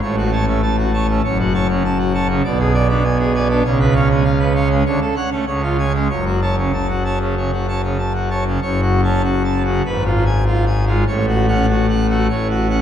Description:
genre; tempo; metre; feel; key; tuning
classical, organ toccata; 98 BPM; 4/4; straight; F# minor; A4 = 437 Hz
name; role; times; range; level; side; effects
pipe organ, full organ; solo; 0.0-12.8 s; F#1 to A5; -15 LUFS; equal; none
room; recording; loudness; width
wet church reverb, RT60 3.0 s; dark, warm production; -15 LUFS; side -9 dB against mid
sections
0.0-8.6 A section; 8.6-12.8 B section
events
none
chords
0.0 F#m/A; 1.2 F#m; 2.5 G#dim/B; 3.7 C#7; 4.9 Dmaj7; 5.5 C#; 6.1 F#m; 9.9 Fdim/Ab; 11.1 F#m/A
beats
0.02 0.63 | 1.24 1.85 2.45 3.05 | 3.65 4.25 4.86 5.48 | 6.11 6.74 7.36 7.99 | 8.62 9.24 9.85 10.46 | 11.07 11.68 12.29

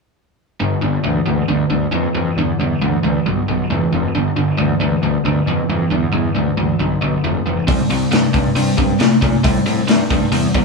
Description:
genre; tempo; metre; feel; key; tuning
blues rock power trio and southern rock; 136 BPM; 4/4; straight; G mixolydian; A4 = 440 Hz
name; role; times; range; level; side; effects
overdriven semi-hollow guitar; riff; 0.6-10.6 s; G2 to A3; -16 LUFS; equal; none
fuzz picked electric bass; bass; 0.6-10.6 s; F1 to Bb2; -20 LUFS; left 1 dB; overdrive
raw garage drum kit; drums; 7.7-10.6 s; hi-hat, kick drum, snare drum; -18 LUFS; left 1 dB; none
room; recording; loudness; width
moderate large studio reverb, RT60 0.9 s; band playing live in one room; -14 LUFS; side -3 dB against mid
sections
0.6-10.6 A section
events
none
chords
0.6 G7(no3); 7.7 C5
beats
| 0.60 1.04 1.49 1.93 | 2.37 2.81 3.26 3.70 | 4.14 4.58 5.03 5.47 | 5.91 6.35 6.79 7.24 | 7.68 8.12 8.56 9.00 | 9.45 9.89 10.33

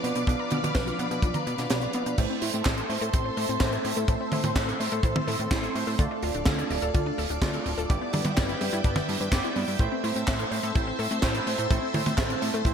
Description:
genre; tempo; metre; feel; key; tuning
italo disco; 126 BPM; 4/4; straight; A minor; A4 = 440 Hz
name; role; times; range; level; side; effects
string machine, full ensemble; sustained chords; 0.0-12.7 s; A4 to E6; -32 LUFS; equal; phaser, ensemble chorus
analog pluck; arpeggios; 0.0-12.7 s; G3 to Bb5; -34 LUFS; left 3 dB; chorus, ping-pong delay
chorused polysynth; stabs; 0.0-12.7 s; F3 to D5; -33 LUFS; right 4 dB; ping-pong delay
fat analog bass; bass; 0.0-12.7 s; D1 to B2; -32 LUFS; equal; none
tight funk drum kit; drums; 0.0-12.7 s; crash cymbal, handclaps, hi-hat, snare drum, toms; -30 LUFS; right 2 dB; gated reverb
kick drum; drums; 0.3-12.7 s; none; -25 LUFS; equal; none
room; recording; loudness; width
moderate lush hall reverb, RT60 2.0 s, studio reverb; bright 1980s-style digital production; -24 LUFS; side -7 dB against mid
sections
0.0-2.2 A section; 2.2-12.7 B section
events
kick drops out 1.7-2.2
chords
0.0 Bdim; 2.2 Am; 6.0 Dm; 7.9 G6; 9.8 Am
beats
| 0.28 0.75 1.23 1.71 | 2.18 2.66 3.13 3.61 | 4.09 4.56 5.04 5.51 | 5.99 6.47 6.94 7.42 | 7.89 8.37 8.85 9.32 | 9.80 10.28 10.75 11.23 | 11.71 12.18 12.66

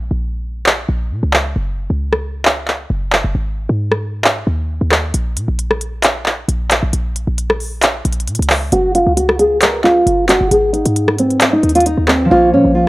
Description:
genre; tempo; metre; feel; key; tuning
hip hop, trap; 134 BPM; 4/4; half-time; unclear; A4 = 439 Hz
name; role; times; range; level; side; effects
short 808-style bass; bass; 0.0-12.9 s; Gb1 to Bb2; -19 LUFS; equal; none
trap drum kit; drums; 0.7-12.2 s; handclaps, hi-hat, rim click; -14 LUFS; equal; none
nylon-string guitar; melody; 8.7-12.9 s; C4 to Bb4; -12 LUFS; equal; low-pass filter, analog delay
concert harp; accompaniment; 12.3-12.9 s; F3 to Db4; -14 LUFS; equal; low-pass filter
room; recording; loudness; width
small room ambience; dry, gritty hardware recording; -13 LUFS; side -19 dB against mid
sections
0.0-12.9 A section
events
break 0.0-5.1; hi-hats muted 12.3-12.9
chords
0.0 Bbm; 1.6 Gb5; 3.3 Ab5; 5.1 N.C.; 8.7 Gb5; 10.5 Ab5; 12.3 Bbm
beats
0.21 0.66 1.11 | 1.56 2.01 2.45 2.90 | 3.35 3.80 4.25 4.69 | 5.14 5.59 6.04 6.48 | 6.93 7.38 7.83 8.28 | 8.72 9.17 9.62 10.07 | 10.51 10.96 11.41 11.86 | 12.30 12.75

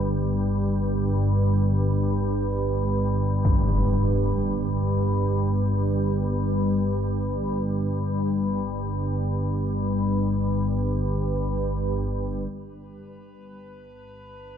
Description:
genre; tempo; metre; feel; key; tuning
dark ambient drone; free time; none; none; G major; A4 = 444 Hz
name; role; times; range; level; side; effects
organ-like drone; drone; 0.0-14.6 s; G1 to G2; -23 LUFS; equal; ensemble chorus, built-in reverb
impact; percussion; 3.4-3.6 s; none; -27 LUFS; equal; low-pass filter on sfx
metallic inharmonic drone; texture; 12.9-14.6 s; B4; -46 LUFS; left 1 dB; chorus, built-in reverb
room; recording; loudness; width
wet cathedral reverb, RT60 4.8 s; none; -22 LUFS; side -8 dB against mid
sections
0.0-12.5 A section; 12.5-14.6 B section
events
none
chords
0.0 N.C.; 12.5 G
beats
free time

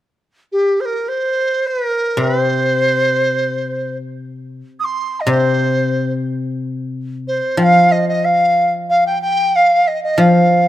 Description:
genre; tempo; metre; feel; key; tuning
chinese traditional, Chinese chamber ensemble; free time; none; none; C yu mode; A4 = 440 Hz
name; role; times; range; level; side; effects
large dizi; melody; 0.5-10.7 s; G4 to Eb6; -14 LUFS; right 1 dB; none
guzheng; accompaniment; 2.2-10.7 s; C3 to F3; -18 LUFS; left 2 dB; none
room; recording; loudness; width
light reverb; close, detailed microphones; -14 LUFS; side -13 dB against mid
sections
0.0-6.3 A section; 6.3-10.7 B section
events
none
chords
none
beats
free time

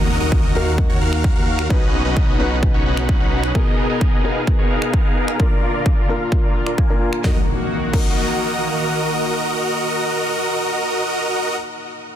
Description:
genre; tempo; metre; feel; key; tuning
EDM, festival progressive house; 130 BPM; 4/4; straight; Eb minor; A4 = 440 Hz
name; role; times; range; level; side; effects
felt-muted upright piano; accompaniment; 0.0-12.2 s; Bb2 to B4; -27 LUFS; left 4 dB; sidechain pumping, ping-pong delay
lush unison pad; sustained chords; 0.0-10.9 s; Cb3 to Bb4; -27 LUFS; equal; chorus, sidechain pumping
big supersaw lead; riff; 0.0-11.6 s; Cb4 to Ab5; -21 LUFS; right 1 dB; sidechain pumping, low-pass filter, ping-pong delay
detuned saw bass; bass; 0.0-3.5 s; B1 to Eb2; -22 LUFS; equal; sidechain pumping
impact; sound effects; 0.0-1.7, 7.2-10.9 s; none; -29 LUFS; equal; none
electronic kick drum; drums; 0.3-8.1 s; none; -17 LUFS; equal; overdrive
big-room dance drum kit; drums; 1.1-8.1 s; crash cymbal, finger snaps, snare drum; -33 LUFS; left 1 dB; overdrive
room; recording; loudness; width
little or no reverb; dense, heavily limited modern master; -16 LUFS; side -10 dB against mid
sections
0.0-7.2 A section; 7.2-10.9 B section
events
impact 0.0-1.7; filter sweep on supersaw synth 0.0-7.2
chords
0.0 Ebm; 1.7 Badd9; 3.5 Abmadd9/Cb; 5.4 Bb; 7.2 Ebm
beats
0.32 0.78 1.24 | 1.70 2.17 2.63 3.09 | 3.55 4.01 4.47 4.93 | 5.40 5.86 6.32 6.78 | 7.24 7.70 8.16 8.63 | 9.09 9.55 10.01 10.47

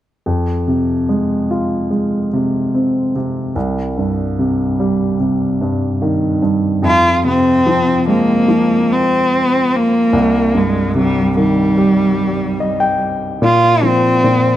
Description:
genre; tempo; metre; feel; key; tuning
pop; 73 BPM; 4/4; straight; F minor; A4 = 437 Hz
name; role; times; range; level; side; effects
warm baby grand piano; accompaniment; 0.3-14.6 s; C2 to G5; -15 LUFS; equal; none
rich cello; melody; 6.9-14.6 s; G3 to F4; -14 LUFS; equal; none
room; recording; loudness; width
light reverb; none; -13 LUFS; side -12 dB against mid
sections
0.3-6.8 A section; 6.8-14.6 B section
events
grand piano fill 12.2-13.4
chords
0.3 Fm; 3.6 Cm; 6.8 Fm; 10.1 Cm; 13.4 Bbsus2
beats
| 0.27 1.09 1.91 2.73 | 3.55 4.38 5.20 6.02 | 6.84 7.66 8.49 9.31 | 10.13 10.95 11.77 12.60 | 13.42 14.24

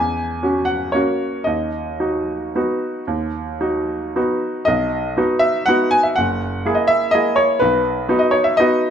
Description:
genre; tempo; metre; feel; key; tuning
classical, piano waltz; 108-130 BPM; 3/4; rubato; B major; A4 = 443 Hz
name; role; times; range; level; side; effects
bright baby grand piano; solo; 0.0-8.9 s; F#1 to G#5; -16 LUFS; equal; none
room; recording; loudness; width
moderate recital hall reverb, RT60 1.8 s; minimal, uncompressed stereo recording; -16 LUFS; side -8 dB against mid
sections
0.0-4.7 A section; 4.7-8.9 A section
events
none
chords
0.0 F#7/E; 1.5 B/D#; 4.7 B; 6.2 F#9; 7.6 B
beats
0.43 0.95 | 1.47 2.01 2.56 | 3.09 3.62 4.17 | 4.68 5.17 5.68 | 6.17 6.64 7.13 | 7.62 8.09 8.59

